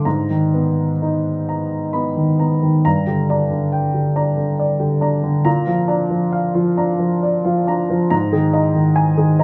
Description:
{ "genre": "neoclassical minimalist piano", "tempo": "62-71 BPM", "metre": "3/4", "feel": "rubato", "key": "unclear", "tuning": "A4 = 440 Hz", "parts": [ { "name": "warm baby grand piano", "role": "solo", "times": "0.0-9.4 s", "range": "G2 to Cb6", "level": "-18 LUFS", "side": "equal", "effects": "none" } ], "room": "wet stone room reverb, RT60 1.0 s", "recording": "band playing live in one room, nothing above 10.6 kHz", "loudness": "-18 LUFS", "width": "mono", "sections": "0.0-2.9 A section; 2.9-9.4 B section", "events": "none", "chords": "0.0 Abmadd9; 2.9 Gm; 5.5 Bb; 8.1 Absus2", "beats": "| 0.05 1.00 1.93 | 2.85 3.74 4.60 | 5.46 6.34 7.23 | 8.11 8.98" }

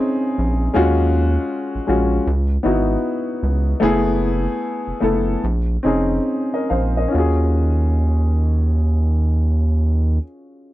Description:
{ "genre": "R&B, neo-soul", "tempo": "68-80 BPM", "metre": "4/4", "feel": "swing 63% on 16ths", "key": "unclear", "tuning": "A4 = 440 Hz", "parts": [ { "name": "warm baby grand piano", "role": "accompaniment", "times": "0.0-10.7 s", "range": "Ab3 to F5", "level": "-20 LUFS", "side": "left 1 dB", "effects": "none" }, { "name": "rubbery square bass", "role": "bass", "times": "0.4-10.2 s", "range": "F1 to Eb2", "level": "-18 LUFS", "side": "equal", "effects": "transformer saturation" } ], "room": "little or no reverb", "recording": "dry, close 1970s-style studio recording", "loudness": "-16 LUFS", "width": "side -16 dB against mid", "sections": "0.0-7.1 A section; 7.1-10.7 B section", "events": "slowing down 0.7-7.1", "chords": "0.0 Bbm11; 0.7 Ebm11; 2.3 Dbm11; 3.8 Gbm11; 5.4 Bbm11; 7.1 Ebm11", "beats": "| 0.74 1.49 2.25 3.02 | 3.80 4.60 5.42 6.26 | 7.12 8.01 8.89 9.77" }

